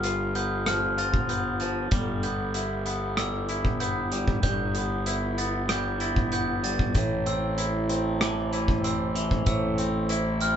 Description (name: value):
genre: post-rock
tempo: 96 BPM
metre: 4/4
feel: straight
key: A minor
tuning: A4 = 440 Hz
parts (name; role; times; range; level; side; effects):
- deep dark ambient pad; sustained chords; 0.0-10.6 s; E4 to B5; -35 LUFS; right 3 dB; chorus, built-in reverb
- glockenspiel with brass mallets; arpeggios; 0.0-10.6 s; D6 to A6; -32 LUFS; right 2 dB; none
- twangy electric guitar; arpeggios; 0.0-10.6 s; G2 to F4; -30 LUFS; left 2 dB; none
- fuzz fingered electric bass; bass; 0.0-10.6 s; G1 to A1; -30 LUFS; equal; overdrive
- loose indie drum kit; drums; 0.0-10.6 s; hi-hat, kick drum, rim click; -29 LUFS; equal; none
room: wet small room reverb, RT60 0.5 s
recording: band playing live in one room, nothing above 7.9 kHz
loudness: -24 LUFS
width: side -9 dB against mid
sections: 0.0-10.6 A section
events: none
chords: 0.0 G7; 1.9 Em/G; 7.0 Am